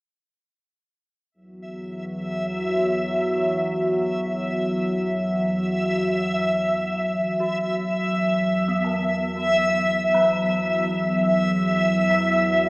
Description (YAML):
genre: dark ambient drone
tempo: free time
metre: none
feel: none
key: unclear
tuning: A4 = 439 Hz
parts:
  - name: analog drone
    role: drone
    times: 1.6-12.7 s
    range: E2 to F#3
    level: -24 LUFS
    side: equal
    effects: chorus, phaser
  - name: backwards swelling texture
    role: texture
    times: 2.0-12.7 s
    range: E5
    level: -22 LUFS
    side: equal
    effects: built-in reverb
  - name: gamelan-type bronze metallophone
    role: arpeggios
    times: 7.4-12.7 s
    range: E3 to F#4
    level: -34 LUFS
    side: equal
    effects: analog delay
room: wet lush hall reverb, RT60 2.6 s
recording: dreamy mix soaked in reverb, small speaker sound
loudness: -20 LUFS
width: side -25 dB against mid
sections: 1.3-12.7 A section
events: fade-in on bronze metallophone 1.3-12.7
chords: 1.3 Esus2